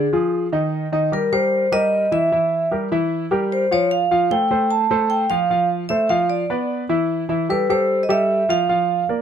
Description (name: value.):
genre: jazz.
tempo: 151 BPM.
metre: 4/4.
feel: straight.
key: unclear.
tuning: A4 = 440 Hz.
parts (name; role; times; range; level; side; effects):
vibraphone with medium hard mallets; melody; 0.0-9.1 s; Ab4 to A5; -18 LUFS; right 1 dB; none.
clear grand piano; accompaniment; 0.0-9.2 s; Eb3 to F5; -20 LUFS; equal; none.
room: little or no reverb.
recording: close, detailed microphones.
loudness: -17 LUFS.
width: side -8 dB against mid.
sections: 0.0-9.2 A section.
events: none.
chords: 0.0 Ddim (rootless); 0.7 Eb6; 2.3 Edim; 3.9 F; 6.3 Dm69; 7.1 Fmaj9/E; 8.7 Dm.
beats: 0.33 | 0.72 1.12 1.52 1.92 | 2.32 2.71 3.11 3.51 | 3.91 4.31 4.71 5.10 | 5.50 5.90 6.30 6.70 | 7.10 7.49 7.89 8.29 | 8.69 9.09.